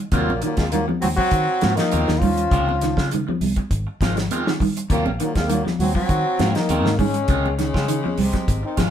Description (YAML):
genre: afrobeat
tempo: 101 BPM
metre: 4/4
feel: straight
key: Eb dorian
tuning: A4 = 440 Hz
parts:
  - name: semi-hollow electric guitar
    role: arpeggios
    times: 0.0-8.9 s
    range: C3 to Gb3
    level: -26 LUFS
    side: left 2 dB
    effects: none
  - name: clear trombone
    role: second line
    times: 0.1-8.8 s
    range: Eb3 to Db4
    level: -30 LUFS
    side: right 3 dB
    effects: none
  - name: growling baritone saxophone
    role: second line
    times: 0.1-8.8 s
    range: Ab2 to Gb3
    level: -31 LUFS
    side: left 4 dB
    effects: none
  - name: electric guitar at the edge of break-up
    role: stabs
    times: 0.1-8.9 s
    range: Eb3 to F4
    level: -28 LUFS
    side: right 3 dB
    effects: phaser
  - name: fingered electric bass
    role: bass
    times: 0.1-8.9 s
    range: Ab1 to Eb3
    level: -24 LUFS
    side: equal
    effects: none
  - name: damped 70s drum kit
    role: drums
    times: 0.1-8.9 s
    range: hi-hat, kick drum, snare drum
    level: -24 LUFS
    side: equal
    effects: none
  - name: congas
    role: percussion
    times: 0.1-8.9 s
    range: none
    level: -26 LUFS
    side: right 4 dB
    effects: none
  - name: breathy trombone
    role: melody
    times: 0.2-8.8 s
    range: Ab3 to Gb4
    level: -24 LUFS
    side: left 2 dB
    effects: none
room: moderate studio reverb, RT60 0.6 s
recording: band playing live in one room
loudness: -18 LUFS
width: side -9 dB against mid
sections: 0.0-8.9 A section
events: none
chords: 0.1 Ebm69; 2.5 Dbmaj9; 4.9 Ebm69; 7.3 Dbmaj9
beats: | 0.13 0.72 1.32 1.92 | 2.52 3.11 3.71 4.31 | 4.90 5.50 6.09 6.69 | 7.29 7.88 8.48